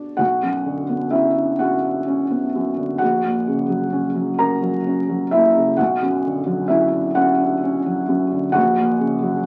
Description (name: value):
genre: neoclassical minimalist piano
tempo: 43 BPM (dotted quarters)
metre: 6/8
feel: rubato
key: B harmonic minor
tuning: A4 = 440 Hz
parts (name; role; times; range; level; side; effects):
- felt-muted upright piano; solo; 0.0-9.5 s; A#1 to A#5; -20 LUFS; equal; none
room: moderate studio reverb, RT60 0.6 s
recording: very old 78 rpm record, vinyl crackle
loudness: -19 LUFS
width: mono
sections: 0.2-9.5 A section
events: none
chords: 0.2 Bmadd9; 3.0 F#/A#; 5.8 Bmadd9; 8.6 F#/A#